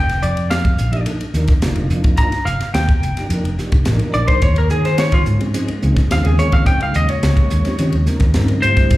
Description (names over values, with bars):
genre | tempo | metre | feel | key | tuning
electric jazz fusion | 107 BPM | 4/4 | straight | unclear | A4 = 440 Hz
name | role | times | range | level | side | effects
lightly driven lead guitar | melody | 0.0-9.0 s | F4 to Bb5 | -20 LUFS | left 1 dB | slapback echo
fretless electric bass | bass | 0.0-9.0 s | F1 to Eb3 | -17 LUFS | equal | none
crisp fusion drum kit | drums | 0.1-9.0 s | hi-hat, kick drum, ride cymbal, snare drum | -18 LUFS | equal | none
mellow tonewheel organ | accompaniment | 0.9-9.0 s | F3 to Bb4 | -24 LUFS | right 1 dB | slow rotary speaker, chorus vibrato, slapback echo
string machine, cellos | sustained chords | 4.4-9.0 s | Db3 to G4 | -26 LUFS | equal | ensemble chorus
room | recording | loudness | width
studio ambience | live gig heard through the venue's PA, club reverb | -14 LUFS | side -17 dB against mid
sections
0.0-9.0 A section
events
lead electric guitar solo 0.0-9.0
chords
0.0 F7sus4; 4.4 Eb13sus4